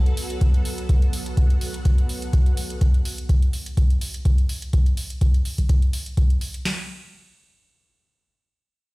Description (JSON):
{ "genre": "acid house", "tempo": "125 BPM", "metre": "4/4", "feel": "swing 54% on 16ths", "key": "unclear", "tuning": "A4 = 437 Hz", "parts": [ { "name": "string machine, full ensemble", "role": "sustained chords", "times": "0.0-2.8 s", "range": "F#3 to F#5", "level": "-34 LUFS", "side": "equal", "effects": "ensemble chorus, sidechain pumping" }, { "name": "deep dark ambient pad", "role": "texture", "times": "0.0-2.8 s", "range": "F#4 to F#5", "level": "-39 LUFS", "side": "right 3 dB", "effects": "chorus, built-in reverb, sidechain pumping" }, { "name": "electronic hi-hat", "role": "drums", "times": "0.1-6.6 s", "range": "none", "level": "-35 LUFS", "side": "right 1 dB", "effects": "none" }, { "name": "booming analog drum machine", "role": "drums", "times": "0.4-6.8 s", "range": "crash cymbal, kick drum, snare drum", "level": "-19 LUFS", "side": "equal", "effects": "none" } ], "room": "little or no reverb", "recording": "played on a big sound system in a bare room, stone room reverb", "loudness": "-19 LUFS", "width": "side -23 dB against mid", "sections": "0.0-6.7 A section; 6.7-8.9 B section", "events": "none", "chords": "0.0 B5; 6.7 N.C." }